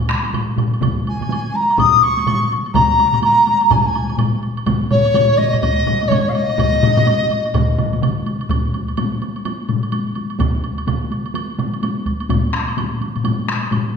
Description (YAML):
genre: japanese traditional, taiko drum ensemble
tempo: 126 BPM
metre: 4/4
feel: swing 60% on 16ths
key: unclear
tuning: A4 = 440 Hz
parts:
  - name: taiko ensemble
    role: percussion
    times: 0.1-13.9 s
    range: none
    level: -24 LUFS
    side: equal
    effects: none
  - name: taiko ensemble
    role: percussion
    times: 0.1-13.8 s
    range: none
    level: -21 LUFS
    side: left 4 dB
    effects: none
  - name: taiko ensemble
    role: percussion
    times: 0.1-11.7 s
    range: none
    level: -23 LUFS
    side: right 4 dB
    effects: none
  - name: woodblock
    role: percussion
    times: 0.1-13.9 s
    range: none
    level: -30 LUFS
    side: right 5 dB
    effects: none
  - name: taiko ensemble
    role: percussion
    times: 0.8-12.4 s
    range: none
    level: -24 LUFS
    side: right 1 dB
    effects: none
  - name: mellow large dizi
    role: melody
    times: 1.1-8.0 s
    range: Db5 to Eb6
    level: -15 LUFS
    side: left 1 dB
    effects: none
room: wet recital hall reverb, RT60 1.4 s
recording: recorded in a church or concert hall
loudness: -15 LUFS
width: side -6 dB against mid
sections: 0.0-8.5 A section; 8.5-14.0 B section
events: none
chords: none